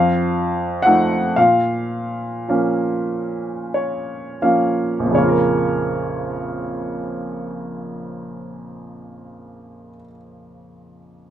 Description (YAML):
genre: classical, lyrical solo piano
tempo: 27-42 BPM (dotted quarters)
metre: 6/8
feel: rubato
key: Bb minor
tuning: A4 = 440 Hz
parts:
  - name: warm baby grand piano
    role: solo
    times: 0.0-11.3 s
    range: Bb1 to Gb5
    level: -18 LUFS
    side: equal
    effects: none
room: light reverb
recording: none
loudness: -18 LUFS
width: side -10 dB against mid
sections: 0.0-5.1 A section; 5.1-9.5 B section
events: slowing down 0.0-5.1; grand piano fill 3.1-5.1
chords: 0.0 F7; 1.4 Bbm